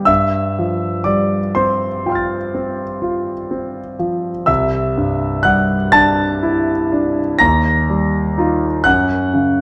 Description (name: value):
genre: classical, impressionist solo piano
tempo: 41 BPM (dotted quarters)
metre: 9/8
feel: rubato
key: unclear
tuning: A4 = 440 Hz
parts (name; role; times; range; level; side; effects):
- clear concert grand piano; solo; 0.0-9.6 s; C2 to Bb6; -17 LUFS; equal; none
room: moderate concert hall reverb, RT60 1.9 s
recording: dark, warm production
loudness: -17 LUFS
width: mono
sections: 0.0-9.6 A section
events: none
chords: 0.1 Fadd9/G; 4.5 C69; 7.4 Ebadd9; 8.9 F#5